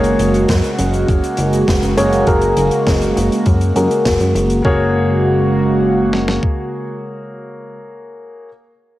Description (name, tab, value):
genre	synthwave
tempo	101 BPM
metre	4/4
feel	straight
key	F# major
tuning	A4 = 440 Hz
part	chorused pulse-width pad	sustained chords	0.0-7.8 s	C#3 to F#4	-17 LUFS	right 1 dB	sidechain pumping, cassette tape
part	clear concert grand piano	stabs	0.0-8.5 s	A#3 to C#5	-19 LUFS	left 1 dB	low-pass filter, cassette tape, tape echo
part	chorused synth bass	bass	0.0-6.4 s	F#1 to F#2	-18 LUFS	equal	none
part	swinging big-band drum kit	drums	0.0-4.6 s	hi-hat, snare drum	-25 LUFS	left 1 dB	cassette tape
part	clean 12-bit digital drum machine	drums	0.5-6.6 s	kick drum, snare drum	-18 LUFS	equal	cassette tape
room	moderate lush hall reverb, RT60 1.7 s, small room ambience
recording	home recording on cassette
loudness	-12 LUFS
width	side -15 dB against mid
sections	0.0-4.6 A section; 4.6-7.0 B section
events	filter sweep on grand piano 0.0-4.6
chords	0.0 F#add9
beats	0.49 1.08 1.68 | 2.27 2.87 3.46 4.05 | 4.65 5.24 5.83 6.43